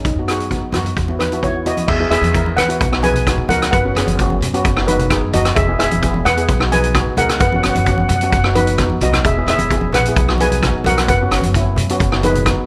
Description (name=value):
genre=calypso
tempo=130 BPM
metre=4/4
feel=straight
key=B major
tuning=A4 = 440 Hz
part: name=steel pan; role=melody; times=0.0-12.7 s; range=D#4 to G#5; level=-21 LUFS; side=equal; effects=none
part: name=steel pan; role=accompaniment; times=0.0-12.6 s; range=B3 to A#4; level=-24 LUFS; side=equal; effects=none
part: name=upright bass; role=bass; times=0.0-12.7 s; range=E1 to E3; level=-22 LUFS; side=equal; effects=none
part: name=street-band drum kit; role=drums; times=0.0-12.6 s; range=crash cymbal, hi-hat, kick drum, rim click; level=-21 LUFS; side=equal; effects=none
part: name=congas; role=percussion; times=0.7-12.5 s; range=none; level=-27 LUFS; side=equal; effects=none
room=light reverb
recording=none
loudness=-16 LUFS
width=mono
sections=0.0-1.9 A section; 1.9-12.7 B section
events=drum fill 8.9-9.2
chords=0.0 B; 1.0 Esus2; 1.9 E; 2.8 B; 3.7 F#sus4; 4.6 B/F#; 5.6 E; 6.5 B; 7.4 F#sus4; 8.3 B/F#; 9.2 E; 10.2 B; 11.1 F#7sus4; 12.0 B/F#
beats=| 0.04 0.51 0.97 1.43 | 1.89 2.35 2.81 3.27 | 3.73 4.19 4.65 5.11 | 5.57 6.03 6.49 6.95 | 7.41 7.87 8.33 8.79 | 9.24 9.71 10.16 10.62 | 11.08 11.54 12.00 12.46